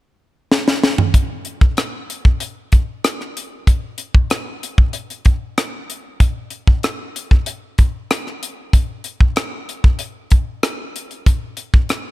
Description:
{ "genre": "soul", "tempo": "95 BPM", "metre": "4/4", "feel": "straight", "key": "none", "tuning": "none", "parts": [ { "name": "tight funk drum kit", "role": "drums", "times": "0.5-12.0 s", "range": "hi-hat, kick drum, rim click, snare drum, toms", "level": "-14 LUFS", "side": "equal", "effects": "none" } ], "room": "little or no reverb", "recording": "none", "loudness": "-15 LUFS", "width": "side -17 dB against mid", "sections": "0.0-1.1 A section; 1.1-6.2 B section; 6.2-12.1 C section", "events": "drum fill 0.5-1.1", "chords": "none", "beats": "0.51 | 1.14 1.77 2.41 3.04 | 3.67 4.30 4.94 5.57 | 6.20 6.84 7.47 8.10 | 8.73 9.37 10.00 10.63 | 11.27 11.90" }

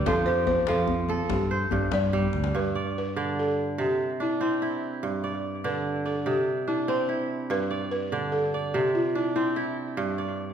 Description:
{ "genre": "west african traditional, West African string and xylophone music", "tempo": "97 BPM (dotted quarters)", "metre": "12/8", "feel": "straight", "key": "G mixolydian", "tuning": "A4 = 435 Hz", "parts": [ { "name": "kora", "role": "arpeggios", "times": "0.0-10.5 s", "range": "G2 to D5", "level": "-28 LUFS", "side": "right 3 dB", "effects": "tape echo" }, { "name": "fingered electric bass", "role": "bass", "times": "0.0-2.5 s", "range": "D2 to G2", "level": "-28 LUFS", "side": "left 1 dB", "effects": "none" }, { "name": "balafon", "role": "melody", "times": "0.1-9.8 s", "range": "E4 to D5", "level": "-28 LUFS", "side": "left 1 dB", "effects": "none" }, { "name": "djembe", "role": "percussion", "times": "0.1-2.5 s", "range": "none", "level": "-32 LUFS", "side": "left 4 dB", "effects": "none" } ], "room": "wet recital hall reverb, RT60 1.3 s", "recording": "heard from further back in the room", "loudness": "-24 LUFS", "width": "side -8 dB against mid", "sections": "0.0-2.5 A section; 2.5-10.5 B section", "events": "drum fill 2.0-2.5", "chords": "0.1 F; 1.3 G5; 2.5 G; 3.8 C; 5.0 G; 6.3 C; 7.5 G; 8.7 C; 10.0 G5", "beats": "| 0.07 0.69 1.31 1.93 | 2.55 3.17 3.79 4.41 | 5.03 5.65 6.27 6.89 | 7.51 8.13 8.75 9.36 | 9.98" }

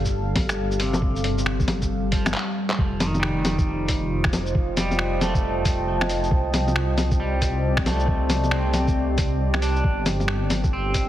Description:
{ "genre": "future garage", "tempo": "136 BPM", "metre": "4/4", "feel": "swing 62% on 16ths", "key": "unclear", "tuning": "A4 = 440 Hz", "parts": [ { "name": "deep dark ambient pad", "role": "sustained chords", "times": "0.0-11.1 s", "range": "G3 to A5", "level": "-28 LUFS", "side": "equal", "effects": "chorus, built-in reverb, sidechain pumping" }, { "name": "dark detuned saw bass", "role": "bass", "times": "0.0-11.1 s", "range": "F1 to C2", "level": "-25 LUFS", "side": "equal", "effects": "sidechain pumping" }, { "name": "electronic kick drum", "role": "drums", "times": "0.1-11.1 s", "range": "none", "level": "-23 LUFS", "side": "equal", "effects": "small room reverb" }, { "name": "lo-fi sampler-style drum kit", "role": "drums", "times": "0.1-11.1 s", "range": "bongos, finger snaps, handclaps, hi-hat, shaker", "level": "-26 LUFS", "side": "left 1 dB", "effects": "small room reverb" }, { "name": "electric guitar at the edge of break-up", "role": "accompaniment", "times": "0.8-11.1 s", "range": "C3 to D4", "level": "-29 LUFS", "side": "equal", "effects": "sidechain pumping, digital delay" } ], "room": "light reverb", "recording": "heavily compressed radio sound", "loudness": "-20 LUFS", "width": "side -13 dB against mid", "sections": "0.0-2.8 A section; 2.8-11.1 B section", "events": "drum fill 2.3-2.8", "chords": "0.0 G7(no3); 2.8 F7; 6.3 Cmadd9; 9.8 G7(no3)", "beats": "0.14 0.58 | 1.02 1.46 1.90 2.35 | 2.79 3.23 3.67 4.11 | 4.55 4.99 5.43 5.88 | 6.32 6.76 7.20 7.64 | 8.08 8.52 8.96 9.40 | 9.85 10.29 10.73" }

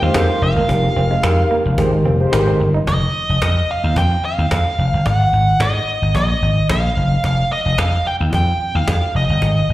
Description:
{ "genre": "early-eighties boogie funk", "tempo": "110 BPM", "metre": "4/4", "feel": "straight", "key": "F minor", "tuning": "A4 = 440 Hz", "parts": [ { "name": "nasal lead guitar with a parked wah", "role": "melody", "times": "0.0-9.7 s", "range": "Eb5 to G5", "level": "-20 LUFS", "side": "right 1 dB", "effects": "overdrive, plate reverb, slapback echo, analog delay" }, { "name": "mellow synth brass", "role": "second line", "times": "0.0-2.6 s", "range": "Ab3 to C5", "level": "-22 LUFS", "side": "left 1 dB", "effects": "chorus, plate reverb, slapback echo" }, { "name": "dark studio string section", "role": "sustained chords", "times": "0.0-2.8 s", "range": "F3 to F4", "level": "-33 LUFS", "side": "left 1 dB", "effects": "none" }, { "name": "vintage slap bass", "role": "bass", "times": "0.0-9.7 s", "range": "F1 to Ab2", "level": "-16 LUFS", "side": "equal", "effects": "tube saturation" }, { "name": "cajon", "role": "drums", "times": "0.0-9.7 s", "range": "none", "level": "-24 LUFS", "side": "equal", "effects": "slapback echo" }, { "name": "tine electric piano", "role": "accompaniment", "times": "0.1-2.7 s", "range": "Ab3 to Bb4", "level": "-21 LUFS", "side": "equal", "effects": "slapback echo" }, { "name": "electric guitar through a small old amp", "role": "riff", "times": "0.1-2.8 s", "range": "Ab3 to Eb4", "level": "-25 LUFS", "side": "right 3 dB", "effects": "lush chorus, slapback echo" } ], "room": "light reverb", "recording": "live gig heard through the venue's PA, recital hall reverb", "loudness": "-14 LUFS", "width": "side -16 dB against mid", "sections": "0.0-2.9 A section; 2.9-9.7 B section", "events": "none", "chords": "0.0 Fm11; 2.9 N.C.; 5.1 Absus2; 7.2 Fsus2", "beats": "0.15 | 0.69 1.24 1.78 2.33 | 2.87 3.42 3.96 4.51 | 5.06 5.60 6.15 6.69 | 7.24 7.78 8.33 8.87 | 9.42" }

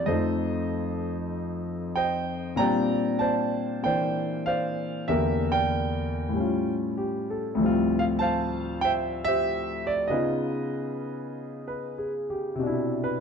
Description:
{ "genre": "solo jazz", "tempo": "96 BPM", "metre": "4/4", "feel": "swing 68% on 8ths", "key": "unclear", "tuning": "A4 = 439 Hz", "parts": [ { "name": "warm concert grand piano", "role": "solo", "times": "0.0-13.2 s", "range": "D2 to Bb5", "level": "-25 LUFS", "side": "equal", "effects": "none" } ], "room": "moderate large studio reverb, RT60 1.2 s", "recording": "dark, warm production", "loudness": "-25 LUFS", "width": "side -6 dB against mid", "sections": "0.0-12.6 A section", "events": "none", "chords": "0.1 F7; 2.6 Bb69; 5.1 Em7b5; 6.3 A7b13; 7.6 Dm11; 10.1 Db9; 12.6 Cmaj9", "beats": "| 0.08 0.71 1.33 1.96 | 2.58 3.21 3.83 4.46 | 5.09 5.71 6.34 6.96 | 7.59 8.21 8.84 9.46 | 10.09 10.72 11.34 11.97 | 12.59" }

